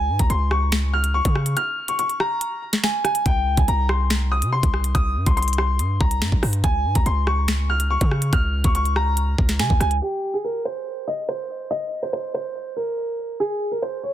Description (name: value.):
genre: hip hop, drill.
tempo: 142 BPM.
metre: 4/4.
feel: half-time.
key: unclear.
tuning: A4 = 438 Hz.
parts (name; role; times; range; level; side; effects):
clear upright piano; melody; 0.0-14.1 s; G4 to F6; -24 LUFS; equal; digital delay.
hard-hitting 808-style bass; bass; 0.0-10.0 s; Bb1 to Db3; -21 LUFS; equal; none.
drill drum kit; drums; 0.2-10.0 s; finger snaps, hi-hat, kick drum, rim click, snare drum; -22 LUFS; equal; soft clipping on snare.
room: little or no reverb.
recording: dense, heavily limited modern master, low-pass filter.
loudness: -19 LUFS.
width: side -12 dB against mid.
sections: 0.0-10.0 A section; 10.0-14.1 B section.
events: break 1.6-3.3; filter sweep 10.0-14.1.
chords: 0.0 Db5; 3.3 C5; 6.6 Db5; 10.0 N.C..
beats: 0.30 0.72 1.15 | 1.57 1.99 2.41 2.83 | 3.26 3.68 4.10 4.53 | 4.95 5.37 5.79 6.21 | 6.64 7.06 7.48 7.91 | 8.33 8.75 9.17 9.60 | 10.02 10.44 10.86 11.29 | 11.71 12.13 12.55 12.98 | 13.40 13.82.